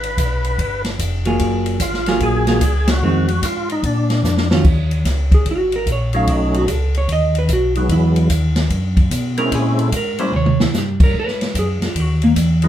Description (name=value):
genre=soul jazz organ trio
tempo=148 BPM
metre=4/4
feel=swing 65% on 8ths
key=Eb phrygian from 4.7 s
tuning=A4 = 439 Hz
part: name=percussive tonewheel organ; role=melody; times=0.0-12.7 s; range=F3 to Cb5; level=-21 LUFS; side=left 1 dB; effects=slow rotary speaker, overdrive, chorus vibrato
part: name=mellow tonewheel organ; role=bass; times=0.0-12.7 s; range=F1 to B2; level=-18 LUFS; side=equal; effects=chorus vibrato, slow rotary speaker
part: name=swinging big-band drum kit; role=drums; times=0.0-12.7 s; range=crash cymbal, hi-hat, kick drum, ride cymbal, snare drum, toms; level=-20 LUFS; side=equal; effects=none
part: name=vintage hollow-body jazz guitar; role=accompaniment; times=1.3-12.3 s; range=Eb3 to F5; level=-20 LUFS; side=right 1 dB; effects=none
room=wet studio reverb, RT60 0.5 s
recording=heard from further back in the room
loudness=-15 LUFS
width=side -11 dB against mid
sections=0.0-4.7 A section; 4.7-12.7 B section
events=band accent 2.8; drum fill 4.2-4.7, 10.3-10.7; hollow-body jazz guitar solo 4.7-12.7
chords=0.0 Abm; 0.6 Fmadd9; 1.4 Gbmaj9; 3.0 Fm7; 3.8 Bb; 4.7 Ebm7; 6.3 B7; 7.9 Emaj9; 9.5 Bbm7b5; 10.3 Eb; 11.1 Abm7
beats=0.18 0.59 0.99 | 1.40 1.81 2.21 2.62 | 3.03 3.44 3.84 4.25 | 4.65 5.06 5.47 5.87 | 6.28 6.68 7.09 7.50 | 7.90 8.31 8.71 9.12 | 9.53 9.93 10.34 10.74 | 11.15 11.55 11.96 12.37